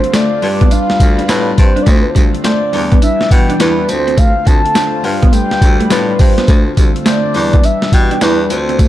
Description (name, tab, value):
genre	R&B, new jack swing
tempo	104 BPM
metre	4/4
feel	swing 65% on 16ths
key	unclear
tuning	A4 = 439 Hz
part	mellow horn-like synth lead	melody	0.0-8.9 s	B4 to A5	-17 LUFS	right 1 dB	chorus
part	bell-like tine electric piano	accompaniment	0.0-8.9 s	G3 to C5	-19 LUFS	left 6 dB	fast stereo tremolo
part	lush unison pad	sustained chords	0.0-8.9 s	D3 to B4	-24 LUFS	equal	chorus, phaser
part	electric guitar at the edge of break-up	riff	0.0-8.9 s	G3 to F4	-19 LUFS	right 4 dB	lush chorus
part	boom bap sampler-style drum kit	drums	0.0-8.9 s	hi-hat, kick drum, snare drum, tambourine	-11 LUFS	equal	none
part	clear baritone saxophone	bass	0.4-8.9 s	D2 to B2	-19 LUFS	equal	none
room	little or no reverb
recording	dark, warm production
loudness	-9 LUFS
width	side -13 dB against mid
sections	0.0-8.9 A section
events	none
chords	0.4 G7; 1.9 Dm7; 2.7 Em7; 3.9 Dm7; 5.0 G7; 6.5 Dm7; 7.3 Em7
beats	0.14 0.71 1.29 | 1.87 2.44 3.02 3.60 | 4.17 4.75 5.33 5.91 | 6.48 7.06 7.64 8.21 | 8.79